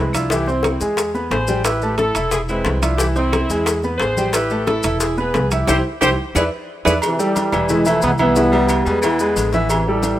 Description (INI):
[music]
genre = latin, salsa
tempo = 179 BPM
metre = 4/4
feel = straight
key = unclear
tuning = A4 = 439 Hz
[part]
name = warm horn section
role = melody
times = 0.0-6.9 s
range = C4 to C5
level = -22 LUFS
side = equal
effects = none
[part]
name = clear baby grand piano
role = accompaniment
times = 0.0-10.2 s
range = E3 to E6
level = -20 LUFS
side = equal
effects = none
[part]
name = upright bass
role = bass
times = 0.0-10.1 s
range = E1 to E2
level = -23 LUFS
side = equal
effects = none
[part]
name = claves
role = percussion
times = 0.1-9.9 s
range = none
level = -34 LUFS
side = left 2 dB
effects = none
[part]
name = congas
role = percussion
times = 0.1-10.2 s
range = none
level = -30 LUFS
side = left 2 dB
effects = none
[part]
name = maracas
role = percussion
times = 0.1-10.2 s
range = none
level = -30 LUFS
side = left 4 dB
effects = none
[part]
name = timbales and agogo bells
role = percussion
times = 0.1-10.2 s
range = none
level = -26 LUFS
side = right 4 dB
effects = none
[part]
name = bongos and cowbell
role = percussion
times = 0.3-10.2 s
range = none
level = -25 LUFS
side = left 4 dB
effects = none
[part]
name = warm trombone section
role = melody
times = 7.0-10.2 s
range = C3 to B3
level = -19 LUFS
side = equal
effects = analog delay
[part]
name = clear baritone saxophone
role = second line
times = 8.5-9.6 s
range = D3 to G3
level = -26 LUFS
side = left 2 dB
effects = none
[sound]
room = light reverb, small room ambience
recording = rough home demo mix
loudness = -15 LUFS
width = side -13 dB against mid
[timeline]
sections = 0.0-7.0 A section; 7.0-10.2 B section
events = band accent 5.7-7.0; drum fill 6.4-7.0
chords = 0.3 C; 1.0 E; 1.7 A5; 2.3 E7; 3.0 C; 3.7 E; 4.3 A5; 5.0 E; 5.7 C; 6.4 E7; 7.0 Am7; 7.7 E; 8.4 C; 9.0 E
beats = | 0.31 0.65 0.98 1.32 | 1.65 1.99 2.33 2.66 | 3.00 3.33 3.67 4.00 | 4.34 4.68 5.01 5.35 | 5.68 6.02 6.35 6.69 | 7.02 7.36 7.69 8.03 | 8.36 8.70 9.03 9.37 | 9.70 10.03